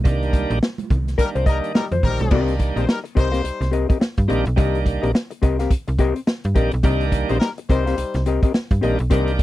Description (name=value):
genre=funk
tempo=106 BPM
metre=4/4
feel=swing 60% on 16ths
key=C minor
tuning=A4 = 441 Hz
part: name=hollow-body jazz guitar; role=accompaniment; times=0.0-9.4 s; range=C4 to F5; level=-23 LUFS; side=left 6 dB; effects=none
part: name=overdriven tonewheel organ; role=stabs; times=0.0-9.4 s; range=D3 to D4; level=-24 LUFS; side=right 4 dB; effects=slow rotary speaker
part: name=slap-like FM bass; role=bass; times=0.0-9.4 s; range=Bb1 to G2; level=-21 LUFS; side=equal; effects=none
part: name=vintage drum kit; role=drums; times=0.1-9.4 s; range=crash cymbal, hi-hat, kick drum, snare drum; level=-19 LUFS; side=equal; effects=none
part: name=congas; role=percussion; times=0.1-2.3 s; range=none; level=-31 LUFS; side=right 7 dB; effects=none
part: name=clear horn section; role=second line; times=1.2-3.7, 7.3-8.2 s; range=G3 to C5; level=-26 LUFS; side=left 4 dB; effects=none
room=little or no reverb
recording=dry, close 1970s-style studio recording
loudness=-18 LUFS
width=side -15 dB against mid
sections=0.0-2.3 A section; 2.3-9.4 B section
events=hollow-body jazz guitar solo 0.0-2.3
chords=0.0 Cm7